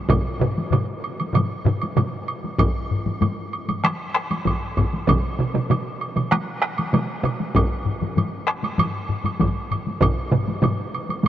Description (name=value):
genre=japanese traditional, taiko drum ensemble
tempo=97 BPM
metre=4/4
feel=straight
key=none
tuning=none
part: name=solo taiko drums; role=percussion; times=0.1-10.2 s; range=none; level=-27 LUFS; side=right 1 dB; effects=none
part: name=taiko ensemble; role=percussion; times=0.1-11.3 s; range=none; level=-26 LUFS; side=left 1 dB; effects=none
part: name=taiko ensemble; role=percussion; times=0.1-11.3 s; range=none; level=-26 LUFS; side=left 3 dB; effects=none
part: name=taiko ensemble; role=percussion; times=0.1-11.3 s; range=none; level=-24 LUFS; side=right 2 dB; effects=none
part: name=woodblock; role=percussion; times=0.1-11.3 s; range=none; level=-29 LUFS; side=right 3 dB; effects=none
room=moderate huge ambient reverb, RT60 6.3 s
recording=worn, warbling old tape, cassette tape, warbly pitch drift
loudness=-20 LUFS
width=side -11 dB against mid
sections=0.0-11.3 A section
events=none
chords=none